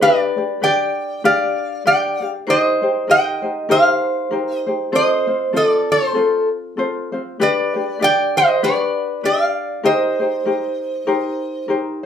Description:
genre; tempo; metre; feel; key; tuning
Hawaiian; 98 BPM; 4/4; swing 58% on 8ths; C minor; A4 = 440 Hz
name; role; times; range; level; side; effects
metal-body resonator slide guitar; melody; 0.0-11.7 s; A4 to G5; -17 LUFS; equal; none
vibraphone with hard mallets; second line; 0.0-11.7 s; A4 to Eb5; -22 LUFS; right 2 dB; none
ukulele; accompaniment; 0.0-12.1 s; C4 to D5; -22 LUFS; left 3 dB; none
room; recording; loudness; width
wet small room reverb, RT60 0.5 s; band playing live in one room; -16 LUFS; side -8 dB against mid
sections
0.0-12.1 A section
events
none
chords
0.0 G; 2.5 Cm7; 4.9 F; 7.4 G; 9.8 Cm7

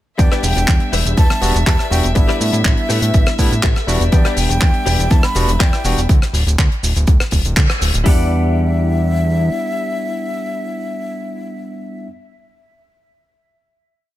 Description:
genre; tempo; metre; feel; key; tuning
nu-disco, nu disco; 122 BPM; 4/4; straight; E minor; A4 = 440 Hz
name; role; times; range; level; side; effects
breathy jazz flute; melody; 0.2-12.1 s; D5 to B5; -25 LUFS; left 1 dB; dub echo
barky tine electric piano; accompaniment; 0.2-12.1 s; G3 to G5; -23 LUFS; equal; ping-pong delay
rich chamber violin section; sustained chords; 0.2-6.1 s; E5; -28 LUFS; equal; sidechain pumping
direct-recorded clean electric guitar; riff; 0.2-12.1 s; E4 to E5; -27 LUFS; left 5 dB; ensemble chorus, ping-pong delay
fat analog bass; bass; 0.2-9.5 s; D1 to A2; -17 LUFS; equal; none
damped 70s drum kit; drums; 0.2-8.0 s; handclaps, hi-hat, rim click, shaker; -21 LUFS; left 1 dB; small room ambience
pop drum kit; drums; 0.2-8.2 s; hi-hat, kick drum; -14 LUFS; equal; overdrive, small room ambience
room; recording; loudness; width
small room reverb; none; -13 LUFS; side -14 dB against mid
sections
0.2-8.1 drop; 8.1-12.0 final chord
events
drop 0.2-8.1; band accent 7.6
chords
0.2 Em7; 2.2 A9sus4; 3.9 Em7; 6.1 N.C.; 8.1 Em7

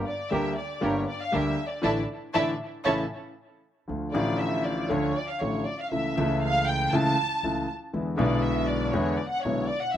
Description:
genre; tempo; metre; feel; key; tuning
tango; 118 BPM; 4/4; rubato; D harmonic minor; A4 = 441 Hz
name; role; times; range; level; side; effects
warm concert grand piano; accompaniment; 0.0-9.7 s; G1 to G4; -27 LUFS; left 1 dB; slapback echo
rich chamber string section; stabs; 0.0-3.0 s; C#4 to Bb4; -34 LUFS; right 5 dB; slapback echo
warm studio violin section; second line; 0.1-10.0 s; C#5 to A5; -29 LUFS; equal; none
upright bass; bass; 0.3-10.0 s; G1 to E2; -36 LUFS; right 2 dB; none
room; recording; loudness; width
little or no reverb; recorded outdoors, with no room sound; -24 LUFS; side -10 dB against mid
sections
0.0-3.9 A section; 3.9-10.0 A section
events
violin section solo 0.0-3.9, 3.9-10.0; band accent 1.8-3.9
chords
0.0 Gm; 1.8 Asus4; 2.9 A; 3.9 Dm; 5.9 A/C#; 7.9 E7

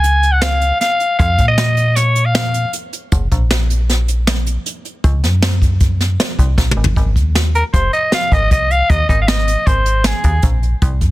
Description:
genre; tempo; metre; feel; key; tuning
progressive instrumental, band music in an uneven meter; 156 BPM; 5/4; straight; Ab mixolydian; A4 = 440 Hz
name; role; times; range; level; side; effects
growling soprano saxophone; melody; 0.0-2.7, 7.6-10.4 s; Ab4 to Ab5; -16 LUFS; equal; none
metallic FM bass; bass; 0.0-11.1 s; F1 to Bb2; -15 LUFS; equal; none
jazz brush drum kit; drums; 0.0-11.1 s; hi-hat, kick drum, snare drum, toms; -17 LUFS; equal; soft clipping on snare
room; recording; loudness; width
little or no reverb; dense, heavily limited modern master; -12 LUFS; side -17 dB against mid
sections
0.0-7.0 A section; 7.0-11.1 B section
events
drum fill 6.6-7.0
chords
0.0 Bbm; 3.1 Gb; 7.0 Ab5

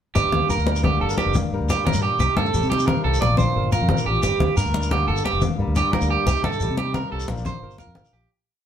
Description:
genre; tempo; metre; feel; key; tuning
highlife guitar band; 118 BPM (dotted quarters); 12/8; straight; G minor; A4 = 442 Hz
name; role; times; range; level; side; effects
electric guitar at the edge of break-up; arpeggios; 0.1-8.3 s; G4 to D5; -23 LUFS; right 5 dB; none
nylon-string guitar; accompaniment; 0.2-8.3 s; G2 to Bb4; -28 LUFS; left 4 dB; none
fingered electric bass; bass; 0.2-8.3 s; F1 to C3; -24 LUFS; equal; none
congas; percussion; 0.2-8.2 s; none; -25 LUFS; left 2 dB; none
shekere; percussion; 0.2-8.2 s; none; -28 LUFS; left 2 dB; none
room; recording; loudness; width
wet studio reverb, RT60 0.7 s; band playing live in one room; -19 LUFS; side -9 dB against mid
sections
0.2-8.3 groove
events
fade-out 6.3-8.3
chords
0.2 Gm; 2.2 Cm; 3.2 Bb; 4.2 Gm; 6.3 Cm; 7.3 Bb

